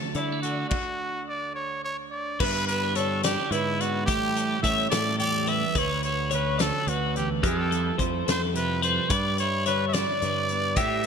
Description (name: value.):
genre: math rock and midwest emo.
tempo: 72 BPM (dotted quarters).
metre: 6/8.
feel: straight.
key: unclear.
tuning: A4 = 437 Hz.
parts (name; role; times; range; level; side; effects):
twelve-string electric guitar; accompaniment; 0.0-11.1 s; D2 to G4; -33 LUFS; right 9 dB; wide subtle chorus.
twelve-string electric guitar; arpeggios; 0.0-11.0 s; G4 to D5; -29 LUFS; left 4 dB; wide subtle chorus, digital delay.
growling trumpet; melody; 0.1-11.1 s; E4 to E5; -28 LUFS; right 1 dB; digital delay.
growling fingered electric bass; bass; 0.1-11.1 s; D2 to D3; -30 LUFS; equal; overdrive.
loose indie drum kit; drums; 0.1-11.1 s; crash cymbal, hi-hat, kick drum, snare drum; -30 LUFS; left 1 dB; gated reverb.
room: moderate lush hall reverb, RT60 2.3 s.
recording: bright 1980s-style digital production.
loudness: -23 LUFS.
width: side -6 dB against mid.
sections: 0.0-2.4 A section; 2.4-11.1 B section.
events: none.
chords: 0.0 D; 2.4 G6; 4.1 A9; 5.8 Dmaj7; 7.4 Fmaj9; 9.1 G6.